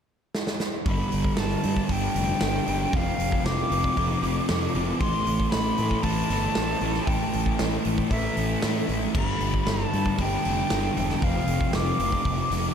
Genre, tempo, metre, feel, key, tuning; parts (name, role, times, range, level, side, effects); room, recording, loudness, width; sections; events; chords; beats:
rock, shoegaze and dream pop; 116 BPM; 4/4; straight; A4 = 439 Hz
huge arena drum kit; drums; 0.3-12.6 s; crash cymbal, hi-hat, kick drum, snare drum; -28 LUFS; equal
bright reedy silver concert flute; melody; 0.9-12.7 s; E5 to D6; -29 LUFS; equal; ping-pong delay
fuzz guitar; riff; 0.9-12.7 s; F2 to A3; -27 LUFS; equal; distortion, analog chorus
fuzz fingered electric bass; bass; 0.9-12.7 s; E1 to A2; -29 LUFS; equal; overdrive
moderate huge ambient reverb, RT60 8.2 s; dreamy mix soaked in reverb; -22 LUFS; side -8 dB against mid
0.9-12.7 A section
drum fill 0.3-0.9
0.0 N.C.; 0.9 Gsus2; 2.9 F5; 5.0 A5; 9.2 Gsus2; 11.2 F5
0.35 | 0.86 1.38 1.90 2.42 | 2.94 3.45 3.97 4.49 | 5.01 5.53 6.04 6.56 | 7.08 7.60 8.12 8.63 | 9.15 9.67 10.19 10.71 | 11.23 11.74 12.26